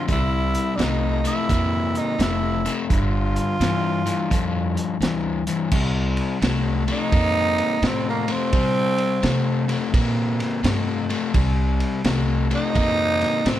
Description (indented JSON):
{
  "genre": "electric blues shuffle",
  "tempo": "85 BPM",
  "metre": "4/4",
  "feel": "swing 65% on 8ths",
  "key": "C mixolydian",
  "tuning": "A4 = 440 Hz",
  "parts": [
    { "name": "growling tenor saxophone", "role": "melody", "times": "0.0-13.6 s", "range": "Bb3 to F4", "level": "-24 LUFS", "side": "right 2 dB", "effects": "none" },
    { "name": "crunchy overdriven guitar", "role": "riff", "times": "0.0-13.6 s", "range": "G2 to Bb3", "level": "-24 LUFS", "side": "left 4 dB", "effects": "none" },
    { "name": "upright bass", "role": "bass", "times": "0.1-13.6 s", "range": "F1 to C3", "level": "-24 LUFS", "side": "right 1 dB", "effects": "none" },
    { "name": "crunchy breakbeat drum kit", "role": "drums", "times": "0.1-13.6 s", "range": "crash cymbal, hi-hat, kick drum, ride cymbal, snare drum", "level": "-26 LUFS", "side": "right 1 dB", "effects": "none" }
  ],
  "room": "light reverb",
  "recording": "none",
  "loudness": "-19 LUFS",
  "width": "side -12 dB against mid",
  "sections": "0.0-5.7 A section; 5.7-13.6 B section",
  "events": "tenor saxophone solo 5.7-13.6",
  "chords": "0.1 C7; 2.9 G5; 5.7 C7(no3)"
}